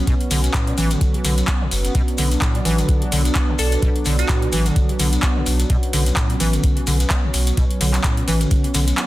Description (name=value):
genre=acid house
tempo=128 BPM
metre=4/4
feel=swing 56% on 16ths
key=B minor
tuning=A4 = 440 Hz
part: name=warm analog pad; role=sustained chords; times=0.0-9.1 s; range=F#3 to D4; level=-25 LUFS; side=right 1 dB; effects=chorus, sidechain pumping
part: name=acid bass, square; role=riff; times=0.1-9.1 s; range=A2 to B3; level=-24 LUFS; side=equal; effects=tube saturation, analog chorus, cassette tape, tape echo
part: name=booming analog drum machine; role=drums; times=0.1-9.1 s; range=handclaps, hi-hat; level=-25 LUFS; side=equal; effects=none
part: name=electronic kick drum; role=drums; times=0.1-8.6 s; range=none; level=-20 LUFS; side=equal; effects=none
part: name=shekere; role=percussion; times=0.1-9.1 s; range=none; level=-32 LUFS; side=left 3 dB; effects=none
part: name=warm sub bass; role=bass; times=0.3-8.9 s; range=F#1 to B1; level=-19 LUFS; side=equal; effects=sidechain pumping
part: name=glassy wavetable pluck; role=melody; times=3.6-4.5 s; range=F#4 to A4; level=-27 LUFS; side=right 3 dB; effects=chorus, tape echo
room=light reverb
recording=dense, heavily limited modern master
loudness=-16 LUFS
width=side -16 dB against mid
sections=0.0-9.1 A section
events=none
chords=0.0 Bm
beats=| 0.07 0.54 1.01 1.48 | 1.95 2.42 2.89 3.35 | 3.82 4.29 4.76 5.23 | 5.70 6.17 6.64 7.11 | 7.57 8.04 8.51 8.98